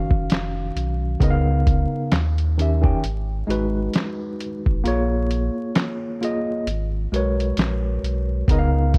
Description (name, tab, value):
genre	lo-fi hip hop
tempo	66 BPM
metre	4/4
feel	swing 60% on 16ths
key	G# dorian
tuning	A4 = 441 Hz
part	tine electric piano	accompaniment	0.0-9.0 s	C#3 to G5	-26 LUFS	equal	low-pass filter
part	warm sub bass	bass	0.0-9.0 s	E#1 to D#2	-25 LUFS	equal	none
part	lo-fi sampler-style drum kit	drums	0.1-9.0 s	handclaps, hi-hat, kick drum, snare drum	-23 LUFS	equal	none
room	little or no reverb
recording	vinyl crackle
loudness	-22 LUFS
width	mono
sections	0.0-8.5 A section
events	break 4.8-8.5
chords	0.0 D#m9; 1.2 C#13; 2.1 D#7b9; 3.0 G#m7; 4.8 A#m7; 6.7 G#m11; 8.5 C#13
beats	0.30 | 1.21 2.12 3.02 3.93 | 4.84 5.75 6.66 7.57 | 8.48